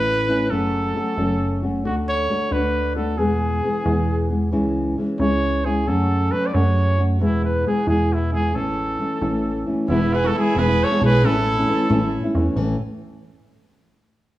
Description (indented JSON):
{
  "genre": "mexican folk, mariachi",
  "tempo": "90 BPM (dotted quarters)",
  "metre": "6/8",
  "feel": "straight",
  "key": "A major",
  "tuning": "A4 = 441 Hz",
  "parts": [
    { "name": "warm trumpet", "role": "melody", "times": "0.0-12.1 s", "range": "E4 to D5", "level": "-23 LUFS", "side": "right 1 dB", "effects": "none" },
    { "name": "nylon-string guitar", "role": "accompaniment", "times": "0.0-12.8 s", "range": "E2 to G#4", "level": "-22 LUFS", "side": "left 1 dB", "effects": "none" },
    { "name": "plucky analog bass", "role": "bass", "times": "0.0-12.8 s", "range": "E1 to F#2", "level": "-23 LUFS", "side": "right 1 dB", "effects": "none" },
    { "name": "rich violin", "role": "second line", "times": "9.9-12.1 s", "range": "B3 to A4", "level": "-28 LUFS", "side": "right 4 dB", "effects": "none" }
  ],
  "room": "moderate recital hall reverb, RT60 1.7 s",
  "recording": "small room ambience",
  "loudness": "-18 LUFS",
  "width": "side -15 dB against mid",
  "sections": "0.0-9.9 A section; 9.9-12.6 B section; 12.6-13.9 C section",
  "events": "none",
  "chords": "0.0 A; 0.5 F#m; 1.8 D; 3.2 E; 4.5 C#m; 5.9 F#m; 7.2 E; 8.5 A; 9.9 E; 11.2 A",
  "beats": "| 0.50 1.17 | 1.84 2.51 | 3.17 3.85 | 4.52 5.19 | 5.87 6.54 | 7.20 7.87 | 8.53 9.21 | 9.88 10.55 | 11.22 11.88 | 12.55"
}